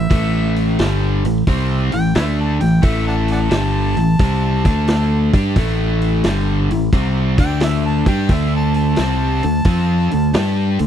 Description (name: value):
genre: blues rock power trio and southern rock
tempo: 88 BPM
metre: 4/4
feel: swing 67% on 8ths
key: unclear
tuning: A4 = 440 Hz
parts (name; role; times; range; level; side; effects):
- warm harmonica; melody; 0.0-10.8 s; B4 to A5; -26 LUFS; equal; overdrive
- biting overdriven guitar; riff; 0.0-10.9 s; G2 to G4; -19 LUFS; equal; none
- growling fingered electric bass; bass; 0.0-10.9 s; G1 to G2; -18 LUFS; equal; overdrive
- vintage drum kit; drums; 0.1-10.9 s; hi-hat, kick drum, snare drum; -17 LUFS; equal; none
room: little or no reverb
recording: dry, close 1970s-style studio recording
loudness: -14 LUFS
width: side -9 dB against mid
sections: 0.0-10.9 A section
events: harmonica solo 0.0-10.9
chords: 0.0 A5; 4.5 D5; 5.2 A5; 7.3 D5; 8.0 Gsus2; 8.3 D5